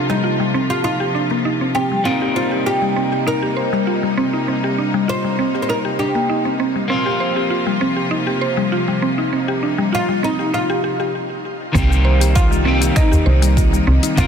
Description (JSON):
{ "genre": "organic downtempo", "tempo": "99 BPM", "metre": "4/4", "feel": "straight", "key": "C minor", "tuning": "A4 = 444 Hz", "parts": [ { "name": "oud", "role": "melody", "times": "0.0-14.3 s", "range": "Eb4 to C5", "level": "-23 LUFS", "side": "equal", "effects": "digital delay, shimmer reverb" }, { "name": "electric guitar at the edge of break-up", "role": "accompaniment", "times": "0.0-14.3 s", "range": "Eb3 to Bb4", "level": "-24 LUFS", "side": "left 2 dB", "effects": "sidechain pumping, digital delay, shimmer reverb" }, { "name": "clear studio string section", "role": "sustained chords", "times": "0.0-14.3 s", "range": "C3 to F4", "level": "-24 LUFS", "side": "equal", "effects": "sidechain pumping, low-pass filter, shimmer reverb" }, { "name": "mallet-like synth pluck", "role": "arpeggios", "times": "0.0-14.3 s", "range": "G3 to C5", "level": "-20 LUFS", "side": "equal", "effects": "chorus, digital delay, shimmer reverb" }, { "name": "woody FM bass", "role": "bass", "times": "11.8-14.3 s", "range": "C2", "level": "-15 LUFS", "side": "equal", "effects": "sidechain pumping" }, { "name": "afro-pop drum kit", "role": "drums", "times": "11.8-14.3 s", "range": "cabasa, finger snaps, hi-hat", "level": "-26 LUFS", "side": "left 6 dB", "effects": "soft clipping on snare" }, { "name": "electronic kick drum", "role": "drums", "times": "11.8-14.3 s", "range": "none", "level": "-16 LUFS", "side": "equal", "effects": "none" }, { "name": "udu", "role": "percussion", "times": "13.1-13.2 s", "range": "none", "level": "-16 LUFS", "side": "equal", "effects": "none" } ], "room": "moderate echo chamber reverb, RT60 2.2 s", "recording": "dense, heavily limited modern master", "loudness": "-15 LUFS", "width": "side -7 dB against mid", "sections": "0.0-11.8 A section; 11.8-14.3 B section", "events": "stop 11.1-11.8", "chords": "0.0 Cm7" }